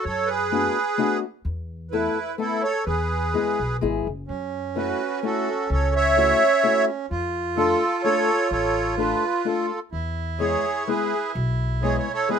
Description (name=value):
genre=musette waltz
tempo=128 BPM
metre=3/4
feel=straight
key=unclear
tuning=A4 = 440 Hz
part: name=accordion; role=melody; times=0.0-12.4 s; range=E4 to E5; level=-22 LUFS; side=right 2 dB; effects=light tremolo tuning
part: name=upright bass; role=bass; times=0.1-12.0 s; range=F#1 to F#2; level=-28 LUFS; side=left 1 dB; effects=none
part: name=fingerpicked old ladder-braced acoustic guitar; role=accompaniment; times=0.5-12.4 s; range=G#3 to A4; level=-26 LUFS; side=left 8 dB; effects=none
part: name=accordion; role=second line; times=4.3-12.4 s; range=C#4 to F4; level=-28 LUFS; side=right 4 dB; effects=none
room=light reverb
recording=minimal, uncompressed stereo recording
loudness=-21 LUFS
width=side -7 dB against mid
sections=0.0-12.4 A section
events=none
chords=0.0 Bm7; 1.5 Esus4; 2.9 E; 4.3 F#m7; 7.1 Dm/F; 9.9 E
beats=| 0.05 0.52 0.99 | 1.45 1.92 2.39 | 2.86 3.33 3.81 | 4.28 4.75 5.22 | 5.70 6.17 6.64 | 7.11 7.57 8.04 | 8.51 8.98 9.45 | 9.93 10.40 10.87 | 11.35 11.82 12.29